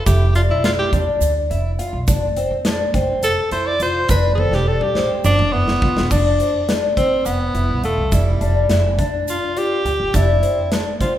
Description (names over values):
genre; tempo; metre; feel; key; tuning
progressive instrumental, band music in an uneven meter; 208 BPM (eighths); 7/8; straight; F lydian; A4 = 440 Hz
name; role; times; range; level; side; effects
clear tenor saxophone; melody; 0.0-11.1 s; G3 to D5; -21 LUFS; equal; none
upright bass; bass; 0.0-10.4 s; E1 to F2; -20 LUFS; right 1 dB; none
fingerpicked twelve-string acoustic guitar; arpeggios; 0.1-11.2 s; C4 to G4; -21 LUFS; left 2 dB; none
big rock drum kit; drums; 0.1-11.1 s; crash cymbal, hi-hat, kick drum, snare drum, toms; -22 LUFS; right 1 dB; none
egg shaker; percussion; 0.1-10.9 s; none; -34 LUFS; right 8 dB; none
room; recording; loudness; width
wet recital hall reverb, RT60 1.4 s; recorded in a church or concert hall; -15 LUFS; side -12 dB against mid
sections
0.0-6.1 A section; 6.1-11.2 B section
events
tenor saxophone solo 0.0-6.1; drum fill 4.4-6.1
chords
0.1 Dm69/F; 2.1 Dm7/F; 4.1 Cmaj7; 6.1 F5; 8.1 G5/F; 10.1 Dm7/F